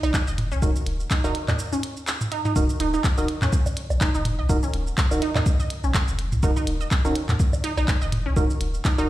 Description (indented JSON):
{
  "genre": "minimal techno",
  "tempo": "124 BPM",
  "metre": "4/4",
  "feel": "swing 56% on 16ths",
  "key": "Eb minor",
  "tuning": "A4 = 435 Hz",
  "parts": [
    { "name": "resonant blip pluck", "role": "riff", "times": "0.0-9.0 s", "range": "Db4 to Eb5", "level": "-29 LUFS", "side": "right 2 dB", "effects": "chorus, phaser, sidechain pumping, ping-pong delay" },
    { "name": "punchy sub bass", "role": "bass", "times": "0.0-9.1 s", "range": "Eb1 to Eb2", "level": "-26 LUFS", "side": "equal", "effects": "sidechain pumping" },
    { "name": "minimal click drum kit", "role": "drums", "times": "0.0-9.1 s", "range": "handclaps, hi-hat, shaker", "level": "-30 LUFS", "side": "equal", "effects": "none" },
    { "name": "electronic woodblock and toms", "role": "percussion", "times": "0.0-9.1 s", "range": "none", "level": "-29 LUFS", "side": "right 1 dB", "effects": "ping-pong delay" },
    { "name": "electronic kick drum", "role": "drums", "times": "0.1-9.0 s", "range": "none", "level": "-21 LUFS", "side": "equal", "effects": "none" },
    { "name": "percussive organ stab", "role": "stabs", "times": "0.6-9.1 s", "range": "Eb4 to Bb4", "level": "-29 LUFS", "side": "right 1 dB", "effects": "chorus, ping-pong delay" }
  ],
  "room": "moderate studio ambience, RT60 0.5 s",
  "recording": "played on a big sound system in a bare room, large studio reverb",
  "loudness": "-21 LUFS",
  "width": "side -15 dB against mid",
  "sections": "0.0-2.6 A section; 2.6-9.1 B section",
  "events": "filter sweep on synth stab 0.0-2.6; break 1.6-2.6; drop 2.6-9.1",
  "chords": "0.0 Ebm"
}